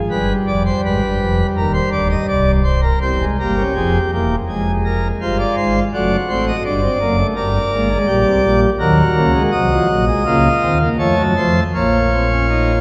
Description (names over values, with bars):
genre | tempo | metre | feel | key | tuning
classical, baroque-style 4-part fugue for pipe organ | 82 BPM | 4/4 | straight | Bb minor from 8.8 s | A4 = 436 Hz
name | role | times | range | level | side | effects
pipe organ, principal chorus | solo | 0.1-12.8 s | C1 to Eb5 | -16 LUFS | equal | none
room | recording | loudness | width
wet church reverb, RT60 3.5 s | none | -16 LUFS | mono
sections
0.0-3.0 A section; 3.0-12.8 B section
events
none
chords
0.1 G7; 1.6 Cm; 3.0 C7/E; 4.5 Fm; 5.9 D7/F#; 7.4 Gm; 8.8 Ebm; 10.3 Bbm/Db; 11.0 F; 11.7 Bbm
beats
| 0.10 0.83 1.56 2.29 | 3.02 3.76 4.49 5.22 | 5.95 6.66 7.37 8.09 | 8.81 9.54 10.26 10.99 | 11.74 12.49